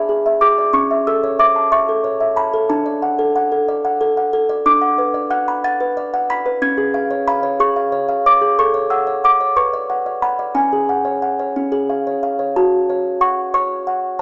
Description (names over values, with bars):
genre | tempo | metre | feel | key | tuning
classical, lullaby for music box | 61 BPM (dotted quarters) | 6/8 | straight | F# minor from 4.7 s | A4 = 440 Hz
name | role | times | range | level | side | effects
music box | solo | 0.0-14.2 s | C#4 to B6 | -17 LUFS | equal | none
room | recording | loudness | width
moderate plate reverb, RT60 3.0 s | small speaker sound | -17 LUFS | mono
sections
0.0-12.6 A section; 12.6-14.2 B section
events
none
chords
0.0 E7/D; 0.7 A/C#; 2.7 D; 4.7 Bm/D; 6.6 C#; 8.6 F#m/A; 9.6 Bm; 10.6 C#sus4; 11.6 C#; 12.6 F#m